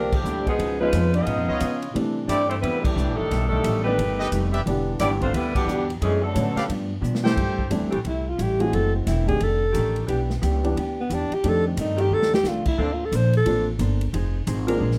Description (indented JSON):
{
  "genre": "jazz, big band swing",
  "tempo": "177 BPM",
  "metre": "4/4",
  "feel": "swing 63% on 8ths",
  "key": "unclear",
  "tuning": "A4 = 439 Hz",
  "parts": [
    { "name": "warm saxophone section", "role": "melody", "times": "0.0-6.7 s", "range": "E3 to D#5", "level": "-28 LUFS", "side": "equal", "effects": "none" },
    { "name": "warm trombone section", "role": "second line", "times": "0.0-6.7 s", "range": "A2 to D#4", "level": "-32 LUFS", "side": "equal", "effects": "none" },
    { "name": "vintage hollow-body jazz guitar", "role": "accompaniment", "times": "0.0-15.0 s", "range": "F2 to C5", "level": "-33 LUFS", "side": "equal", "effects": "none" },
    { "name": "upright bass", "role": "bass", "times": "0.0-15.0 s", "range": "E1 to C#3", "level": "-27 LUFS", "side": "equal", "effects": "none" },
    { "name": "swinging big-band drum kit", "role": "drums", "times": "0.1-15.0 s", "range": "crash cymbal, hi-hat, kick drum, ride cymbal, snare drum", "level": "-33 LUFS", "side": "equal", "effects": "none" },
    { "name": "warm upright piano", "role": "accompaniment", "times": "0.8-14.8 s", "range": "D3 to A4", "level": "-30 LUFS", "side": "equal", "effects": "none" },
    { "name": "bright trumpet section", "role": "stabs", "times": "1.5-7.7 s", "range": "E4 to G5", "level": "-32 LUFS", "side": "equal", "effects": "none" },
    { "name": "mellow saxophone section", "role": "sustained chords", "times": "7.9-15.0 s", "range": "D3 to Bb4", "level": "-31 LUFS", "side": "equal", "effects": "none" },
    { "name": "breathy alto saxophone", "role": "melody", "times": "8.1-13.7 s", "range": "B3 to C5", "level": "-26 LUFS", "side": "equal", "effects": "none" }
  ],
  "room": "light reverb",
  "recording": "none",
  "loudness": "-23 LUFS",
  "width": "mono",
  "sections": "0.0-7.4 A section; 7.4-15.0 B section",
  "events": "band accent 0.1, 2.8, 5.5; drum fill 7.0-7.4, 12.1-12.4; alto saxophone solo 7.4-15.0",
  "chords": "0.0 Bbmaj13; 0.6 C#9; 1.9 C69; 3.3 B7alt; 4.7 Em7; 6.0 Bm7; 6.7 G7; 7.4 C6; 8.7 F#m7b5; 9.4 F13; 10.1 Em7; 11.4 F13; 12.8 Bbmaj9; 14.1 Fm7"
}